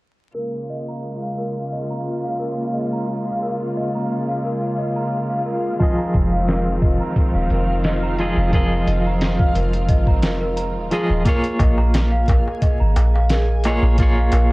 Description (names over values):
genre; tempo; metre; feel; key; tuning
trip hop; 88 BPM; 4/4; swing 54% on 16ths; Bb minor; A4 = 440 Hz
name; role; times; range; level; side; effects
celesta; arpeggios; 0.3-14.5 s; Ab4 to Bb5; -26 LUFS; right 1 dB; vintage 12-bit sampler grit, low-pass filter, tape echo
clear symphonic string section; sustained chords; 0.4-11.2 s; Db3 to F4; -26 LUFS; equal; low-pass filter
backwards swelling texture; texture; 1.2-14.5 s; F4 to Ab4; -33 LUFS; right 1 dB; built-in reverb
clean electric guitar; accompaniment; 5.8-14.5 s; F3 to Eb5; -23 LUFS; equal; tremolo, tape echo
boom bap sampler-style drum kit; drums; 5.8-14.5 s; hi-hat, kick drum, snare drum; -19 LUFS; equal; small room ambience
soft 808-style bass; bass; 6.1-14.5 s; Eb1 to Bb1; -19 LUFS; equal; none
darbuka; percussion; 11.3-14.5 s; none; -32 LUFS; left 1 dB; none
room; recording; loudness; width
small room ambience; worn, warbling old tape, cassette tape, vinyl crackle, warbly pitch drift, low-pass filter; -17 LUFS; side -22 dB against mid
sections
0.3-11.3 A section; 11.3-14.5 B section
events
filter sweep on string section 0.3-11.3; filter sweep on celesta 0.3-11.3, 11.3-14.5; filter sweep 0.3-11.3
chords
0.3 Bbm7; 5.8 Fm7; 11.3 Bbm7